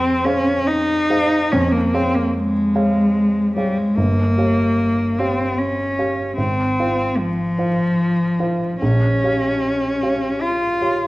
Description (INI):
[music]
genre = classical, romantic duo for cello and grand piano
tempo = 74 BPM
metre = 3/4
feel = uneven beats, rubato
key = unclear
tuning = A4 = 435 Hz
[part]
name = rich cello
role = melody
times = 0.0-11.1 s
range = F3 to F4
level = -18 LUFS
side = equal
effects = none
[part]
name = dark baby grand piano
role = accompaniment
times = 0.0-11.1 s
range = G1 to F5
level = -21 LUFS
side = right 1 dB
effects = none
[sound]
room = wet recital hall reverb, RT60 1.6 s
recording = worn, warbling old tape, cassette tape, vinyl crackle, warbly pitch drift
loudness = -16 LUFS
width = side -19 dB against mid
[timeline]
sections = 0.0-11.1 A section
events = none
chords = 0.0 Fm; 1.5 Db/F; 4.0 Gm7b5; 6.4 Fm/Ab; 8.8 Gm7b5/Bb